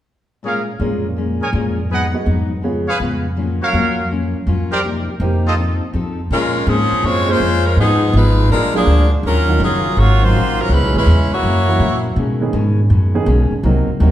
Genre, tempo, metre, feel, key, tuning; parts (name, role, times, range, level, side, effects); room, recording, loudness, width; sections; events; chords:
jazz, big band swing; 164 BPM; 4/4; swing 64% on 8ths; Bb minor; A4 = 440 Hz
fingerpicked steel-string acoustic guitar; accompaniment; 0.4-14.1 s; Gb2 to C5; -22 LUFS; left 3 dB
warm trumpet section; stabs; 0.4-5.5 s; F4 to Ab5; -22 LUFS; right 1 dB
warm grand piano; accompaniment; 0.8-2.9, 5.2-14.1 s; Eb3 to Eb5; -23 LUFS; right 3 dB
upright bass; bass; 0.8-14.1 s; Gb1 to B2; -16 LUFS; equal
bright saxophone section; melody; 6.3-12.1 s; F3 to Db5; -17 LUFS; left 1 dB
wet recital hall reverb, RT60 1.7 s; recorded in a church or concert hall; -14 LUFS; side -12 dB against mid
0.4-6.3 A section; 6.3-14.1 B section
0.4 Bbm7; 1.9 Abm7; 2.6 Db7; 3.4 Gbmaj7; 4.8 Cm7; 5.6 F7; 6.3 Bbm9; 7.8 Fm7b5; 8.5 Bb7b13; 9.2 Ebm9; 10.7 Dbm7; 11.4 Gb7; 12.2 B69